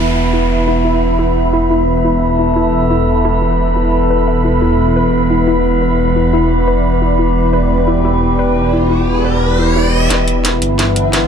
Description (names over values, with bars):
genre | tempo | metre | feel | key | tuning
dark technical drum and bass | 175 BPM | 4/4 | straight | E minor | A4 = 440 Hz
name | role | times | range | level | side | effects
metallic inharmonic drone | sustained chords | 0.0-11.3 s | E3 to A4 | -16 LUFS | right 1 dB | chorus, built-in reverb
warbly dusty pluck | arpeggios | 0.0-11.0 s | E4 to E5 | -21 LUFS | left 4 dB | chorus, ping-pong delay
phased detuned saw bass | bass | 0.0-11.3 s | E1 to G1 | -16 LUFS | equal | phaser, tube saturation
downlifter and riser | sound effects | 0.0-1.9, 8.0-11.3 s | none | -22 LUFS | equal | none
airy breathy pad | texture | 0.0-11.3 s | E4 to B5 | -17 LUFS | equal | chorus
drum and bass drum kit | drums | 10.1-11.2 s | hi-hat, snare drum | -16 LUFS | equal | high-pass filter on hats, high-pass filter on perc, high-pass filter on snare, high-pass filter on room
room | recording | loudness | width
moderate digital room reverb, RT60 1.2 s, digital ambience | none | -11 LUFS | side -7 dB against mid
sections
0.0-10.1 A section; 10.1-11.3 B section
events
riser 8.0-10.1, 10.1-11.3; build-up 10.1-11.3; drum fill 10.1-11.3; filter sweep on synth drone 10.1-11.3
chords
0.0 E5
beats
0.16 | 0.50 0.85 1.19 1.53 | 1.88 2.22 2.56 2.90 | 3.25 3.59 3.93 4.28 | 4.62 4.96 5.30 5.65 | 5.99 6.33 6.68 7.02 | 7.36 7.70 8.05 8.39 | 8.73 9.08 9.42 9.76 | 10.10 10.45 10.79 11.13